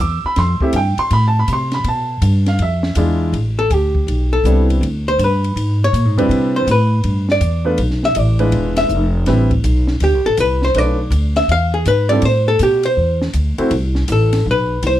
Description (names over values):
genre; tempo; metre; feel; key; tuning
jazz, small-group swing and bop; 162 BPM; 4/4; swing 65% on 8ths; A minor; A4 = 440 Hz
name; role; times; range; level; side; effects
warm upright piano; accompaniment; 0.0-13.7 s; G3 to D6; -18 LUFS; right 1 dB; none
upright bass; bass; 0.0-15.0 s; E1 to C3; -16 LUFS; equal; none
compact cocktail drum kit; drums; 0.4-14.9 s; hi-hat, kick drum, ride cymbal, snare drum; -28 LUFS; equal; none
archtop guitar, miked and amplified; melody; 3.6-15.0 s; G4 to F5; -17 LUFS; left 1 dB; none
room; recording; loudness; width
light reverb; dark, warm production; -13 LUFS; side -13 dB against mid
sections
0.0-3.3 A section; 3.3-15.0 A section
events
hollow-body jazz guitar solo 3.3-15.0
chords
0.4 Fmaj9; 1.9 G9; 2.6 E7b9; 3.3 Am11; 4.8 G/D; 5.6 C#7; 6.3 Cmaj9; 7.8 Bm7b5; 8.5 E7b9; 9.3 Am11; 10.8 Bm7b5; 11.5 E7; 12.2 Amadd9; 13.7 Am; 14.5 Cmaj7(no3)/B